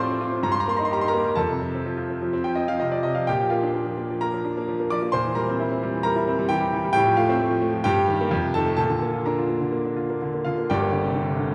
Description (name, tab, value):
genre	classical, virtuoso piano study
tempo	130 BPM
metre	4/4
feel	rubato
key	Bb major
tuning	A4 = 440 Hz
part	clear grand piano	solo	0.0-11.5 s	G1 to D6	-24 LUFS	equal	none
room	wet scoring stage reverb, RT60 1.8 s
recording	none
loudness	-24 LUFS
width	mono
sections	0.0-10.7 A section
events	none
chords	0.5 Eb/G; 1.4 F; 3.3 Bb; 5.1 C7/Bb; 7.0 F/A; 7.9 Eb/G; 8.3 F9; 8.8 Bb; 10.7 Gm